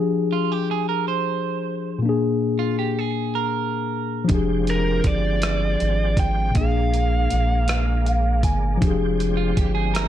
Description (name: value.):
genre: slow six-eight R&B.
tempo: 53 BPM (dotted quarters).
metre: 6/8.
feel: straight.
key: F dorian.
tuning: A4 = 441 Hz.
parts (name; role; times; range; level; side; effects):
tine electric piano; accompaniment; 0.0-10.1 s; Bb2 to Ab5; -23 LUFS; left 4 dB; none.
electric guitar at the edge of break-up; second line; 0.3-4.3, 9.4-10.1 s; F4 to C5; -27 LUFS; right 12 dB; slapback echo.
tonewheel organ; sustained chords; 4.3-10.1 s; F3 to G5; -33 LUFS; right 3 dB; chorus vibrato, fast rotary speaker.
rubbery square bass; bass; 4.3-10.1 s; F1 to Bb1; -22 LUFS; right 1 dB; none.
dusty soul sampler-style drum kit; drums; 4.3-10.1 s; hi-hat, kick drum, rim click; -23 LUFS; right 1 dB; none.
biting lead guitar; melody; 4.7-8.4 s; Bb4 to G5; -26 LUFS; right 2 dB; overdrive, slapback echo.
room: light reverb.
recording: dark, warm production.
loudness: -19 LUFS.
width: side -11 dB against mid.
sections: 0.0-10.1 A section.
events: tine electric piano fill 7.7-8.8.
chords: 0.0 Fm69; 2.0 Bb7; 4.3 Fm69; 6.6 Bb7; 8.8 Fm69.